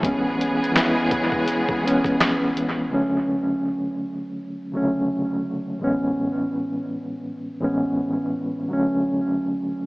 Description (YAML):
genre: lo-fi hip hop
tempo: 83 BPM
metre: 4/4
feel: swing 59% on 16ths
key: unclear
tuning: A4 = 440 Hz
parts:
  - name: mellow reed electric piano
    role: accompaniment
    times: 0.0-9.9 s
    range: A2 to E4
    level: -22 LUFS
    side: equal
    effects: fast tremolo, analog delay
  - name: clear studio string section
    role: sustained chords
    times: 0.0-2.9 s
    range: C#3 to G#4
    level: -26 LUFS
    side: equal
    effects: none
  - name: soft dub sub bass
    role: bass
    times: 0.0-2.9 s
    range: E1 to A1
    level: -39 LUFS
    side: equal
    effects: none
  - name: boom bap sampler-style drum kit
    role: drums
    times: 0.0-2.8 s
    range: finger snaps, hi-hat, kick drum, snare drum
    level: -25 LUFS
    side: equal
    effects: vintage 12-bit sampler grit, analog delay
room: moderate echo chamber reverb, RT60 2.4 s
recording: echo-heavy mix, AM radio sound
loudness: -21 LUFS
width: side -23 dB against mid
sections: 0.0-2.9 A section; 2.9-9.9 B section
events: none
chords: 0.0 Amaj9; 2.9 Dmaj7; 5.8 Amaj9; 8.7 Bm9 (rootless)